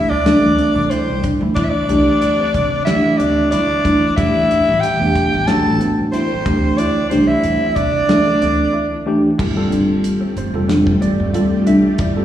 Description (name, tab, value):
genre	electric jazz fusion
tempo	92 BPM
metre	4/4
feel	swing 54% on 16ths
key	D minor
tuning	A4 = 440 Hz
part	growling soprano saxophone	melody	0.0-9.1 s	C5 to A5	-18 LUFS	equal	slapback echo
part	growling tenor saxophone	second line	0.0-9.1 s	C4 to A4	-23 LUFS	left 1 dB	slapback echo
part	tine electric piano	accompaniment	0.0-12.2 s	E3 to E5	-18 LUFS	right 1 dB	medium stereo tremolo, slapback echo
part	upright bass	bass	0.0-12.2 s	F1 to D3	-22 LUFS	equal	none
part	mellow electric guitar	stabs	0.3-12.2 s	B3 to F4	-21 LUFS	left 1 dB	lush chorus, slapback echo
part	damped 70s drum kit	drums	0.3-12.2 s	crash cymbal, hi-hat, kick drum, snare drum	-22 LUFS	equal	none
part	string machine, violins	sustained chords	9.4-12.2 s	C3 to G4	-23 LUFS	equal	ensemble chorus
room	light reverb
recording	live gig heard through the venue's PA, recital hall reverb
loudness	-13 LUFS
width	side -11 dB against mid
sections	0.0-9.4 A section; 9.4-12.2 B section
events	break 8.7-9.4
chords	0.0 D9sus4; 4.2 A9sus4; 6.5 D9sus4; 9.4 G9sus4